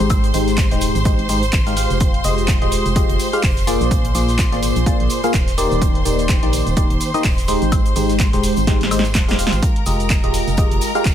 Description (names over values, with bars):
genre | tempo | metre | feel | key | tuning
piano house | 126 BPM | 4/4 | swing 57% on 16ths | unclear | A4 = 440 Hz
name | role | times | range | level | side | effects
bright studio string section | sustained chords | 0.0-11.1 s | Bb4 to C6 | -25 LUFS | equal | sidechain pumping
barking FM electric piano | riff | 0.0-11.0 s | Ab2 to F5 | -20 LUFS | left 1 dB | phaser, sidechain pumping
organ-like FM bass | bass | 0.0-11.1 s | Eb1 to Bb1 | -21 LUFS | equal | sidechain pumping
punchy analog drum machine | drums | 0.0-11.1 s | handclaps, hi-hat, shaker, snare drum, woodblock | -25 LUFS | right 1 dB | none
tambourine | percussion | 0.0-11.1 s | none | -35 LUFS | right 1 dB | none
electronic kick drum | drums | 0.1-11.1 s | none | -18 LUFS | equal | none
modern studio drum kit | drums | 0.1-11.1 s | hi-hat, snare drum | -35 LUFS | right 5 dB | none
room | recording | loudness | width
small room ambience | none | -14 LUFS | side -10 dB against mid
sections
0.0-11.1 A section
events
drum fill 8.7-9.6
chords
0.1 Abmaj7; 2.0 Fm9; 3.9 Bb7; 5.6 Ebmaj7; 7.7 Abmaj7; 9.6 Fm9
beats
| 0.10 0.58 1.05 1.53 | 2.01 2.48 2.96 3.44 | 3.91 4.39 4.86 5.34 | 5.82 6.29 6.77 7.25 | 7.72 8.20 8.67 9.15 | 9.62 10.10 10.58 11.05